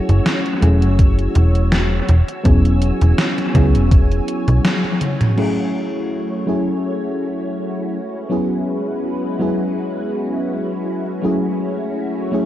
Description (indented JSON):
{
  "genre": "vaporwave",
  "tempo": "82 BPM",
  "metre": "4/4",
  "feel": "swing 54% on 16ths",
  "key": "F# minor",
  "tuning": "A4 = 440 Hz",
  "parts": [
    { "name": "mellow FM electric piano", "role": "accompaniment", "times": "0.0-12.5 s", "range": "F#3 to G#4", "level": "-20 LUFS", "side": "left 1 dB", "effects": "wide subtle chorus, analog delay" },
    { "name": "soft string machine", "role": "sustained chords", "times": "0.0-12.5 s", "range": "G#3 to E6", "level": "-26 LUFS", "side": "right 1 dB", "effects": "phaser, ensemble chorus" },
    { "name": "slap-like FM bass", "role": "bass", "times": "0.1-4.6 s", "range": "E1 to C#2", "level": "-14 LUFS", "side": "equal", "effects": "none" },
    { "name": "gated 80s digital drum machine", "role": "drums", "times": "0.1-5.5 s", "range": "crash cymbal, hi-hat, snare drum, toms", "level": "-21 LUFS", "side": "equal", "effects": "gated reverb, gated reverb snare, overdrive, analog delay" },
    { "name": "electronic kick drum", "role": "drums", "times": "1.0-4.1 s", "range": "none", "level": "-13 LUFS", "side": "equal", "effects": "overdrive" }
  ],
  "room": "light reverb, digital ambience",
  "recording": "echo-heavy mix, cassette tape",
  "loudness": "-15 LUFS",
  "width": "side -13 dB against mid",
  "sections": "0.0-5.4 A section; 5.4-12.5 B section",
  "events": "break 4.6-5.4; drum fill 4.6-5.4; band accent 4.6-5.0",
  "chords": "0.0 F#m7; 2.1 E69; 5.4 F#m7; 7.9 E69; 11.2 F#m7"
}